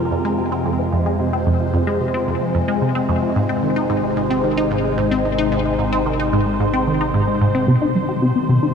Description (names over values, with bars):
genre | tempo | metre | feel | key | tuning
ambient, sequencer-driven space music | 111 BPM | 4/4 | straight | unclear | A4 = 436 Hz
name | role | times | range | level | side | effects
phased analog pad | sustained chords | 0.0-8.7 s | C3 to C5 | -21 LUFS | equal | phaser, chorus
resonant blip pluck | riff | 0.0-8.7 s | F2 to G4 | -18 LUFS | equal | phaser, ping-pong delay
analog drone | bass | 0.0-7.7 s | Ab1 to F2 | -28 LUFS | equal | chorus, tube saturation
room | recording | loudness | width
wet huge ambient reverb, RT60 8.1 s | in a vast, echoing space | -16 LUFS | side -6 dB against mid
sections
0.0-7.7 A section; 7.7-8.7 B section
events
filter sweep on synth arpeggio sound 7.7-8.7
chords
0.0 Fm; 3.4 Ab; 7.7 Cm7